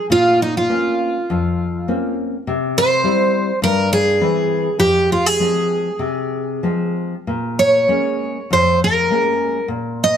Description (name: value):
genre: fado-style ballad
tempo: 100 BPM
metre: 4/4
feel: uneven beats, rubato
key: unclear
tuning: A4 = 440 Hz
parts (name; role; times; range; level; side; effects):
- picked twelve-string acoustic guitar; melody; 0.0-10.2 s; Eb4 to Eb5; -16 LUFS; right 1 dB; none
- nylon-string guitar; accompaniment; 0.1-10.2 s; F2 to E4; -20 LUFS; left 3 dB; none
room: moderate recital hall reverb, RT60 1.5 s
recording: close, detailed microphones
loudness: -15 LUFS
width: side -8 dB against mid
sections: 0.0-10.2 A section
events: none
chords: 0.1 Bbmadd9; 2.5 C; 4.8 Fm; 7.3 Bbm7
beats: | 0.09 0.68 1.28 1.87 | 2.46 3.03 3.61 4.20 | 4.79 5.38 5.99 6.62 | 7.26 7.87 8.49 9.10 | 9.69